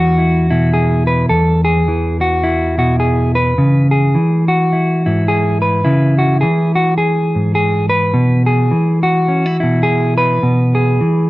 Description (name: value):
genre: folk, solo fingerstyle acoustic guitar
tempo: 105 BPM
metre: 4/4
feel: swing 60% on 8ths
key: E major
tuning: A4 = 440 Hz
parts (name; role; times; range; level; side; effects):
- mellow electric guitar; solo; 0.0-11.3 s; E2 to B4; -12 LUFS; equal; none
room: little or no reverb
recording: close, detailed microphones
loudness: -12 LUFS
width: side -18 dB against mid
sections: 0.0-11.3 A section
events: none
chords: 0.0 E; 3.6 C#m7; 8.1 E/B